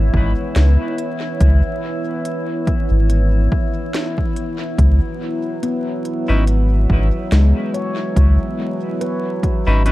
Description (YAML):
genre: ambient dub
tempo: 71 BPM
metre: 4/4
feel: swing 57% on 16ths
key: C# minor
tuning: A4 = 441 Hz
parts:
  - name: deep dark ambient pad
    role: sustained chords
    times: 0.0-9.9 s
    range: B3 to C#5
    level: -26 LUFS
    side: right 1 dB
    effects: chorus, built-in reverb
  - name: handpan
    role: arpeggios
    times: 0.0-9.9 s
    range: G#3 to C#5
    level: -26 LUFS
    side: left 2 dB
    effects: tape echo
  - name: warm sub bass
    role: bass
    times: 0.0-9.9 s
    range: G#1 to C#2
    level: -13 LUFS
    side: equal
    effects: tube saturation
  - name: drifting glass-harmonics texture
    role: texture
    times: 0.0-9.9 s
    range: E3 to E4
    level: -27 LUFS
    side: equal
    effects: chorus, built-in reverb
  - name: electronic kick drum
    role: drums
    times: 0.1-9.6 s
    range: none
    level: -20 LUFS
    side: equal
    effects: overdrive
  - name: organic electronic drum kit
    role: drums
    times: 0.6-9.9 s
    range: hi-hat, snare drum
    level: -29 LUFS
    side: equal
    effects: dub echo
  - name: semi-hollow electric guitar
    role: stabs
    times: 6.3-9.9 s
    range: C#4 to B4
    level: -28 LUFS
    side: left 1 dB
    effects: dub echo
room: little or no reverb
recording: dark, warm production, vinyl crackle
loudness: -15 LUFS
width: side -16 dB against mid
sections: 0.0-9.9 A section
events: none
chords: 0.0 C#m7